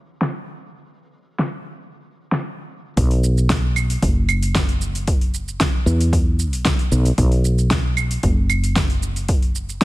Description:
organic downtempo; 114 BPM; 4/4; straight; A4 = 439 Hz
woody fretless electric bass; bass; 0.0-9.8 s; F#1 to E2; -19 LUFS; equal; sidechain pumping
deep house drum kit; drums; 0.2-9.8 s; claves, hi-hat, shaker, snare drum; -23 LUFS; equal; overdrive, low-pass filter on snare, low-pass filter on hats, low-pass filter on perc
electronic kick drum; drums; 3.0-9.8 s; -21 LUFS; equal; overdrive
little or no reverb; -17 LUFS; side -18 dB against mid
0.0-3.0 A section; 3.0-9.8 B section
0.34 | 0.86 1.39 1.92 2.44 | 2.97 3.50 4.02 4.55 | 5.08 5.60 6.13 6.66 | 7.18 7.71 8.23 8.76 | 9.29 9.81

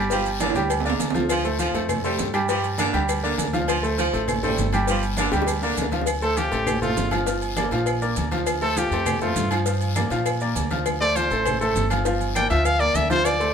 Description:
latin, salsa; 201 BPM; 4/4; straight; D minor; A4 = 440 Hz
bright upright piano; accompaniment; 0.0-13.5 s; F3 to G5; -25 LUFS; equal
upright bass; bass; 0.0-13.5 s; G1 to Bb2; -27 LUFS; equal
clear saxophone section; second line; 0.1-5.9 s; D3 to G3; -28 LUFS; right 2 dB
congas; percussion; 0.1-13.5 s; -32 LUFS; equal
cowbell and bongos; percussion; 0.1-13.4 s; -32 LUFS; left 8 dB
guiro; percussion; 0.1-13.5 s; -37 LUFS; left 6 dB
maracas; percussion; 0.1-13.5 s; -36 LUFS; right 5 dB
agogo bells and timbales; percussion; 0.3-13.4 s; -30 LUFS; right 6 dB
claves; percussion; 0.4-13.4 s; -37 LUFS; left 8 dB
bright trumpet; melody; 6.2-13.5 s; F4 to G5; -23 LUFS; left 1 dB
moderate studio reverb, RT60 0.9 s; band playing live in one room; -20 LUFS; side -7 dB against mid
0.0-6.1 A section; 6.1-13.5 B section
drum fill 0.4-1.3, 5.3-6.1; trumpet solo 6.1-13.5
0.1 Gm7; 1.3 Dm7; 2.5 Gm7; 3.7 Dm7; 4.9 Gm7; 6.1 Dm7; 7.3 Gm7; 8.5 Dm7; 9.7 Gm7; 10.9 Dm7; 12.1 Gm7
| 0.11 0.41 0.70 1.00 | 1.30 1.60 1.90 2.19 | 2.49 2.79 3.09 3.39 | 3.69 3.98 4.28 4.58 | 4.88 5.18 5.48 5.78 | 6.08 6.37 6.67 6.97 | 7.27 7.57 7.87 8.17 | 8.47 8.77 9.06 9.36 | 9.66 9.96 10.26 10.56 | 10.86 11.16 11.46 11.76 | 12.05 12.35 12.65 12.95 | 13.25

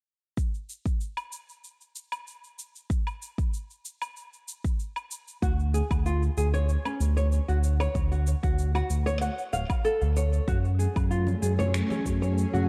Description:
organic downtempo; 95 BPM; 4/4; straight; F# harmonic minor; A4 = 440 Hz
electronic cabasa, woodblock and finger snaps; drums; 0.4-12.7 s; -41 LUFS; equal
electronic kick drum; drums; 0.4-12.2 s; -30 LUFS; equal
flamenco guitar; arpeggios; 5.4-12.6 s; C#4 to F#5; -34 LUFS; equal; tape echo
smooth gliding synth bass; bass; 5.4-12.7 s; D1 to F#2; -27 LUFS; equal; sidechain pumping
granular cloud pad; sustained chords; 10.9-12.7 s; F#3 to G#4; -34 LUFS; equal; built-in reverb, sidechain pumping
congas and bongos; percussion; 10.8-12.7 s; -40 LUFS; equal
light reverb; dark, warm production; -27 LUFS; mono
0.4-10.5 A section; 10.5-12.7 B section
0.4 N.C.; 5.4 Dmaj7; 10.5 F#m
| 0.37 1.00 1.64 2.27 | 2.90 3.53 4.16 4.79 | 5.43 6.06 6.69 7.32 | 7.95 8.58 9.22 9.85 | 10.48 11.11 11.74 12.37

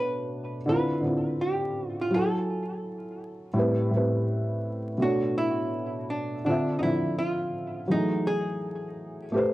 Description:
hip hop; 83 BPM; 4/4; swing 64% on 16ths; A4 = 439 Hz
archtop guitar, miked and amplified; melody; 0.0-9.3 s; D4 to B4; -30 LUFS; right 1 dB; plate reverb, analog delay
felt-muted upright piano; accompaniment; 0.0-9.5 s; A2 to G#5; -27 LUFS; equal; cassette tape
moderate studio reverb, RT60 0.6 s; home recording on cassette, vinyl crackle; -25 LUFS; side -16 dB against mid
0.0-9.5 A section
0.0 Bm9; 0.7 Dm9; 2.1 F#m9; 3.6 Am9; 5.0 Bm9; 6.4 Dm9; 7.9 F#m9
0.66 1.39 | 2.11 2.83 3.56 4.28 | 5.00 5.72 6.45 7.17 | 7.89 8.62 9.34

